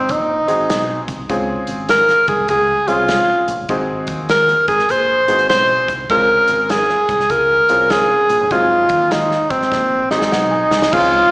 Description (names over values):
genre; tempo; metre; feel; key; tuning
uptempo 1960s-style soul; 100 BPM; 4/4; swing 64% on 8ths; unclear; A4 = 441 Hz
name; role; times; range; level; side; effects
breathy tenor saxophone; melody; 0.0-11.3 s; C4 to C5; -13 LUFS; equal; slapback echo
deep dub fingered electric bass; bass; 0.0-11.2 s; G1 to Eb2; -27 LUFS; equal; none
natural country drum kit; drums; 0.1-11.1 s; crash cymbal, hi-hat, kick drum, snare drum; -24 LUFS; equal; slapback echo
clear upright piano; accompaniment; 0.5-11.3 s; Gb3 to Ab5; -22 LUFS; equal; slapback echo
room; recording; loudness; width
light reverb; live gig heard through the venue's PA, recital hall reverb, small speaker sound; -13 LUFS; side -25 dB against mid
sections
0.0-10.9 A section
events
drum fill 9.7-10.9; upright piano fill 10.0-10.9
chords
0.0 Ab7; 1.3 Dbmaj7; 3.7 Ab7; 6.1 Dbmaj7; 8.5 Ab7